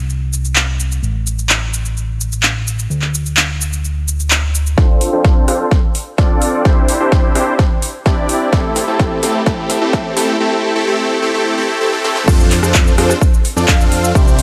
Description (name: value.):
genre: EDM, festival progressive house.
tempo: 128 BPM.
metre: 4/4.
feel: straight.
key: unclear.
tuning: A4 = 440 Hz.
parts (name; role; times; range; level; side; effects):
fat analog bass; bass; 0.0-14.4 s; A1 to A2; -22 LUFS; equal; sidechain pumping, high-pass filter.
pop drum kit; drums; 0.1-14.4 s; crash cymbal, handclaps, hi-hat, ride cymbal, rim click, shaker, snare drum; -20 LUFS; equal; overdrive, high-pass filter on perc, high-pass filter on snare, high-pass filter on hats, high-pass filter on cymbals, high-pass filter on room.
supersaw chords; riff; 4.8-14.4 s; A3 to F5; -18 LUFS; equal; sidechain pumping, low-pass filter, dub echo.
electronic kick drum; drums; 4.8-14.2 s; none; -15 LUFS; equal; overdrive.
room: moderate lush hall reverb, RT60 2.1 s.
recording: high-pass filter.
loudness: -15 LUFS.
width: mono.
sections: 0.0-4.8 A section; 4.8-12.3 B section; 12.3-14.4 C section.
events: build-up 4.8-12.3; drum fill 4.8-10.4, 11.9-12.3; filter sweep on supersaw synth 4.8-12.3; filter sweep 4.8-12.3; drop 12.3-14.4.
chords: 0.0 N.C.; 4.8 F6; 6.7 Cadd9; 8.5 Am7; 12.3 F6.